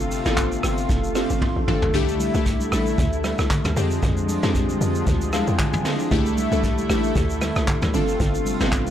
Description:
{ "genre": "amapiano", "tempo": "115 BPM", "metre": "4/4", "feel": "swing 55% on 16ths", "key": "C major", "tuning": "A4 = 440 Hz", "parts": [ { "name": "glassy digital keys", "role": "accompaniment", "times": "0.0-8.9 s", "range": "Ab3 to C6", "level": "-25 LUFS", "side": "left 2 dB", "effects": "chorus" }, { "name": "lush unison pad", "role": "sustained chords", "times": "0.0-8.9 s", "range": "C3 to F4", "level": "-27 LUFS", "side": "equal", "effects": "chorus, sidechain pumping" }, { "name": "hollow log drum bass", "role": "bass", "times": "0.0-8.9 s", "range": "F1 to F2", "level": "-25 LUFS", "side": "equal", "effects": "none" }, { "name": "vintage brush drum kit", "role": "drums", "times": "0.0-8.9 s", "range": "handclaps, hi-hat, kick drum, rim click, shaker, snare drum, toms", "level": "-24 LUFS", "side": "equal", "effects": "none" }, { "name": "congas", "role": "percussion", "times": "1.9-8.9 s", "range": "none", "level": "-30 LUFS", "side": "right 1 dB", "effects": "none" } ], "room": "small room ambience", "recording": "dry, gritty hardware recording", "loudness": "-19 LUFS", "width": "side -10 dB against mid", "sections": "0.0-8.9 A section", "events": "synth keys fill 1.2-1.9, 5.1-6.1, 8.7; drum fill 1.4-1.9", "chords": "0.0 G9sus4; 1.9 C69; 3.8 Fm6; 6.1 C69; 7.9 G9sus4", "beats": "0.37 0.90 1.42 | 1.94 2.46 2.98 3.50 | 4.03 4.55 5.07 5.59 | 6.11 6.63 7.16 7.68 | 8.20 8.72" }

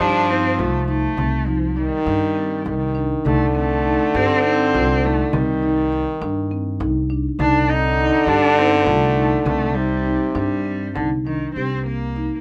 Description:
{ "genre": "contemporary instrumental, chamber music in an uneven meter", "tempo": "202 BPM (eighths)", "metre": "7/8", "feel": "straight", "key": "C dorian", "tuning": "A4 = 442 Hz", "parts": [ { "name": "rich cello", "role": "melody", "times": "0.0-12.4 s", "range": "D3 to Eb4", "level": "-25 LUFS", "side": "equal", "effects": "none" }, { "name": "clear French horn", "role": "second line", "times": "0.0-11.3 s", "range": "C3 to F3", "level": "-23 LUFS", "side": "equal", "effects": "none" }, { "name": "marimba with soft mallets", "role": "arpeggios", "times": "0.0-12.4 s", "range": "C4 to G4", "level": "-26 LUFS", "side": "equal", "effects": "none" }, { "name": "upright bass", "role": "bass", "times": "0.0-12.3 s", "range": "C2 to G2", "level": "-27 LUFS", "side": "equal", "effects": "none" }, { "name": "frame drum", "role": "percussion", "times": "0.0-11.2 s", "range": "none", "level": "-30 LUFS", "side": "equal", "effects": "none" } ], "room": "moderate studio reverb, RT60 0.6 s", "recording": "none", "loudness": "-19 LUFS", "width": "mono", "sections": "0.0-11.6 A section", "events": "none", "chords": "0.0 Cm69; 11.6 Cm7", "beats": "0.01 0.30 0.59 0.88 | 1.18 1.47 1.77 2.06 2.36 2.66 2.96 | 3.25 3.55 3.85 4.15 4.45 4.74 5.04 | 5.33 5.63 5.92 6.22 6.51 6.81 7.10 | 7.39 7.69 7.98 8.28 8.57 8.87 9.16 | 9.46 9.76 10.05 10.35 10.65 10.96 11.26 | 11.56 11.86 12.16" }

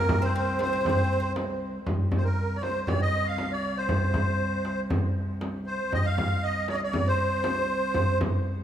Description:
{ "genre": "Arabic maqam ensemble", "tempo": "118 BPM", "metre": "4/4", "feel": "straight", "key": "C maqam bayati", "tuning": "A4 = 440 Hz", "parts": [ { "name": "musette accordion", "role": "melody", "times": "0.0-8.2 s", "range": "Bb4 to F5", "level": "-28 LUFS", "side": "right 1 dB", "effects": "none" }, { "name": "oud", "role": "second line", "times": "0.0-1.3 s", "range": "Bb3 to C4", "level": "-32 LUFS", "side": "right 1 dB", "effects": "none" }, { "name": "rich cello", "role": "drone", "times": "0.0-8.6 s", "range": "C2", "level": "-35 LUFS", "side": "equal", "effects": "none" }, { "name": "darbuka", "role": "percussion", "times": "0.1-8.3 s", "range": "none", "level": "-28 LUFS", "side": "equal", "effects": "none" }, { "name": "frame drum", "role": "percussion", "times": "0.1-8.3 s", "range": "none", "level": "-32 LUFS", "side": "right 1 dB", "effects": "none" } ], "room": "moderate lush hall reverb, RT60 2.6 s", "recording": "rough home demo mix", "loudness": "-24 LUFS", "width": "side -10 dB against mid", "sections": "0.0-1.9 A section; 1.9-8.6 B section", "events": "none", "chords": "none", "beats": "0.34 0.85 1.36 | 1.86 2.37 2.88 3.38 | 3.89 4.40 4.91 5.42 | 5.92 6.43 6.94 7.45 | 7.96 8.46" }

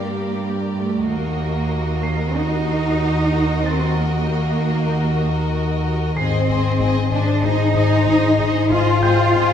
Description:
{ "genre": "cinematic", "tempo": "94 BPM", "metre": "4/4", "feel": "straight", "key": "unclear", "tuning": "A4 = 440 Hz", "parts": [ { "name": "warm studio violin section", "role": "melody", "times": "0.0-9.5 s", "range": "D5 to Eb5", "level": "-30 LUFS", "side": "left 2 dB", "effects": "none" }, { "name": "warm symphonic violin section", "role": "second line", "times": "0.0-9.5 s", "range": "Gb4 to C5", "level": "-26 LUFS", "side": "left 2 dB", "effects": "none" }, { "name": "clear symphonic double bass section", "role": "bass", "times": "0.0-9.4 s", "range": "Ab1 to G2", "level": "-26 LUFS", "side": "right 3 dB", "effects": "none" }, { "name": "warm symphonic cello section", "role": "bass", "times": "0.0-9.5 s", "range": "A3 to F4", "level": "-20 LUFS", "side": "right 1 dB", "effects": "none" }, { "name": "warm concert grand piano", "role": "texture", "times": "0.0-9.5 s", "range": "G5 to C7", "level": "-33 LUFS", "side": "right 2 dB", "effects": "none" }, { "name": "marimba with medium hard mallets", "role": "riff", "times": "0.1-9.5 s", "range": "G2 to Eb3", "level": "-21 LUFS", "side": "left 3 dB", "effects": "none" } ], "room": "wet recital hall reverb, RT60 1.5 s", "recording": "recorded in a church or concert hall, nothing above 10.8 kHz", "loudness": "-16 LUFS", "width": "side -8 dB against mid", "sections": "0.0-9.5 A section", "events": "none", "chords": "0.0 Gm; 1.1 Ebm; 6.2 Ab", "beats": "0.43 | 1.07 1.71 2.36 2.99 | 3.63 4.27 4.90 5.53 | 6.17 6.80 7.43 8.06 | 8.70 9.34" }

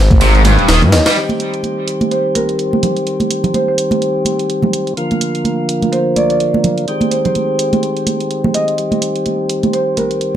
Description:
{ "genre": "breakbeat, breaks", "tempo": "126 BPM", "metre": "4/4", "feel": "swing 57% on 16ths", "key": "C minor", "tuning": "A4 = 441 Hz", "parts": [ { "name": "detuned saw bass", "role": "bass", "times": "0.0-1.0 s", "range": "Eb1 to Ab2", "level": "-10 LUFS", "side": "equal", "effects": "tube saturation" }, { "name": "breakbeat sampler-style drum kit", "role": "drums", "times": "0.1-1.2 s", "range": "kick drum, ride cymbal, snare drum", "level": "-14 LUFS", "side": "equal", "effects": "small room ambience" }, { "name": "electronic hi-hat", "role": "drums", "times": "0.1-10.3 s", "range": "none", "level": "-24 LUFS", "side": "right 4 dB", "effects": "small room ambience" }, { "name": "congas", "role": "percussion", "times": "0.1-10.1 s", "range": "none", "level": "-19 LUFS", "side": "right 3 dB", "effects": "none" }, { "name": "overdriven electric guitar", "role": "riff", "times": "0.2-1.2 s", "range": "G2 to G3", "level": "-16 LUFS", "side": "equal", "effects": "tape echo" }, { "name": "marimba with medium mallets", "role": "melody", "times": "0.9-10.2 s", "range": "Bb4 to Eb5", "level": "-20 LUFS", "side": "right 1 dB", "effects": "telephone sound, tape echo" }, { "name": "percussive tonewheel organ", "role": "sustained chords", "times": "1.2-10.4 s", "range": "D3 to C5", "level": "-17 LUFS", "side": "left 1 dB", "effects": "slow rotary speaker, vintage 12-bit sampler grit, sidechain pumping" } ], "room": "wet studio reverb, RT60 0.6 s", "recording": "dark, warm production", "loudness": "-12 LUFS", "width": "side -10 dB against mid", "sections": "0.0-1.2 A section; 1.2-10.4 B section", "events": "none", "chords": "0.0 Abmaj7(no3); 1.2 Cm; 5.0 Bb; 6.9 Abmaj7; 8.8 Cm", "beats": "0.21 0.69 | 1.16 1.64 2.12 2.59 | 3.07 3.54 4.02 4.50 | 4.97 5.45 5.92 6.40 | 6.88 7.35 7.83 8.31 | 8.78 9.26 9.73 10.21" }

